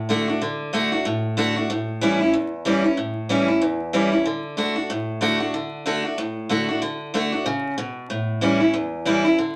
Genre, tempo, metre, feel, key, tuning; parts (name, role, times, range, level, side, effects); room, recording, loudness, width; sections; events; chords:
rock; 188 BPM; 4/4; swing 59% on 8ths; D major; A4 = 440 Hz
picked steel-string acoustic guitar; solo; 0.0-9.6 s; E2 to F#4; -23 LUFS; equal
wet small room reverb, RT60 0.6 s; vinyl crackle; -23 LUFS; mono
0.0-4.3 A section; 4.3-9.6 B section
0.0 D; 1.7 A7; 4.3 D; 8.1 A7